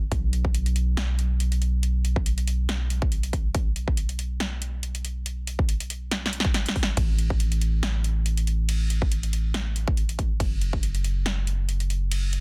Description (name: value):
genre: future bass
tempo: 140 BPM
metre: 4/4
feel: swing 55% on 16ths, half-time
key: unclear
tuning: A4 = 439 Hz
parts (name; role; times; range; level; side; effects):
- long sustained 808-style bass; bass; 0.0-12.4 s; F#1 to B1; -28 LUFS; equal; sidechain pumping
- big-room dance drum kit; drums; 0.1-12.4 s; hi-hat, ride cymbal, snare drum; -33 LUFS; equal; none
- electronic kick drum; drums; 0.1-10.8 s; none; -27 LUFS; equal; none
room: little or no reverb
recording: dense, heavily limited modern master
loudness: -26 LUFS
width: mono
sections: 0.0-12.4 A section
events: drum fill 6.1-7.0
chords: none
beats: | 0.12 0.55 0.97 1.40 | 1.83 2.26 2.69 3.12 | 3.54 3.97 4.40 4.83 | 5.26 5.69 6.12 6.54 | 6.97 7.40 7.83 8.26 | 8.69 9.12 9.54 9.97 | 10.40 10.83 11.26 11.69 | 12.12